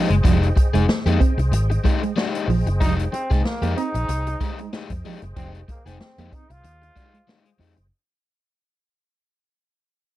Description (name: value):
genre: funk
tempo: 94 BPM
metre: 4/4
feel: swing 56% on 16ths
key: F minor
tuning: A4 = 440 Hz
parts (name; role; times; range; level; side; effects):
- crunchy overdriven guitar; accompaniment; 0.0-7.8 s; Ab3 to Ab4; -27 LUFS; left 6 dB; none
- percussive tonewheel organ; sustained chords; 0.0-7.9 s; Ab4 to G5; -36 LUFS; equal; chorus vibrato, slow rotary speaker
- electric guitar through a small old amp; riff; 0.0-7.7 s; F3 to C4; -27 LUFS; right 7 dB; tremolo
- vintage muted fingered electric bass; bass; 0.1-7.9 s; F1 to F2; -21 LUFS; equal; none
- swinging big-band drum kit; drums; 0.1-7.9 s; hi-hat, kick drum, snare drum; -21 LUFS; equal; none
- brilliant trombone; melody; 2.8-7.6 s; Bb3 to F4; -31 LUFS; equal; none
room: light reverb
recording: dark, warm production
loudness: -18 LUFS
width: side -15 dB against mid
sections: 0.0-7.9 A section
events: fade-out 0.0-7.9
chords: 0.0 Fm9